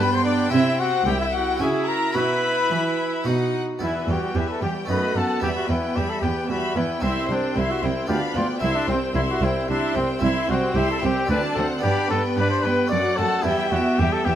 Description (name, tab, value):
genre	classical, baroque-style concerto movement with solo episodes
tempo	112 BPM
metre	3/4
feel	straight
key	E minor, G major from 10.2 s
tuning	A4 = 441 Hz
part	clear chamber violin section	melody	0.0-14.4 s	E5 to C6	-32 LUFS	left 4 dB	none
part	warm trumpet	melody	0.0-14.4 s	C4 to D5	-25 LUFS	left 1 dB	none
part	rich chamber violin section	second line	0.0-14.4 s	G4 to C6	-28 LUFS	left 4 dB	none
part	harpsichord	accompaniment	0.0-14.4 s	C2 to G4	-29 LUFS	equal	none
part	rich chamber viola section	accompaniment	0.0-14.4 s	E3 to E4	-28 LUFS	right 3 dB	none
part	warm chamber cello section	bass	0.0-14.3 s	C2 to E3	-25 LUFS	right 3 dB	none
room	light reverb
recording	close, detailed microphones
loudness	-20 LUFS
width	side -10 dB against mid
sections	0.0-3.8 A section; 3.8-14.4 A section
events	none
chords	0.0 G; 0.5 C; 1.6 F#7/C#; 2.2 Bsus4; 3.3 B; 3.8 Em; 4.9 B7/F#; 5.4 Em; 7.0 C; 8.1 G7/D; 8.6 C; 11.3 D7; 11.8 G; 12.9 D/F#; 13.5 Em